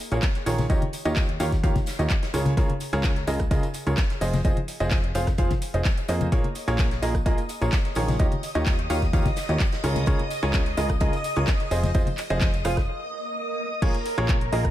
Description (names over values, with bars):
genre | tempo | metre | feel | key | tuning
piano house | 128 BPM | 4/4 | straight | F minor | A4 = 440 Hz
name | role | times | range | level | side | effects
gated 80s drum kit | drums | 0.0-12.9 s | hi-hat, snare drum | -40 LUFS | right 1 dB | sidechain pumping on hats, high-pass filter on hats, studio reverb, high-pass filter on snare, high-pass filter on room
tambourine and congas | percussion | 0.0-12.9 s | none | -33 LUFS | left 4 dB | none
clear baby grand piano | riff | 0.1-14.6 s | Db3 to F5 | -28 LUFS | right 1 dB | sidechain pumping, ping-pong delay
plucky analog bass | bass | 0.1-14.7 s | F1 to F2 | -27 LUFS | equal | tube saturation, sidechain pumping
house drum kit | drums | 0.1-14.7 s | crash cymbal, handclaps, hi-hat, rim click | -34 LUFS | right 1 dB | studio reverb
electronic kick drum | drums | 0.2-14.7 s | none | -24 LUFS | equal | studio reverb
string machine, violins | sustained chords | 6.3-14.7 s | Bb4 to Eb6 | -32 LUFS | equal | ensemble chorus, sidechain pumping
swell | sound effects | 13.0-13.8 s | none | -35 LUFS | right 4 dB | none
room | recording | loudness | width
small room ambience | none | -22 LUFS | side -13 dB against mid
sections
0.0-13.8 A section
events
break 12.9-13.8; swell 13.0-13.8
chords
0.0 Bbm7; 0.7 Eb9; 2.3 Db6; 4.2 Fm7; 6.3 Bbm7; 8.2 Eb9; 9.8 Db6; 11.7 Fm7; 13.8 Bbm7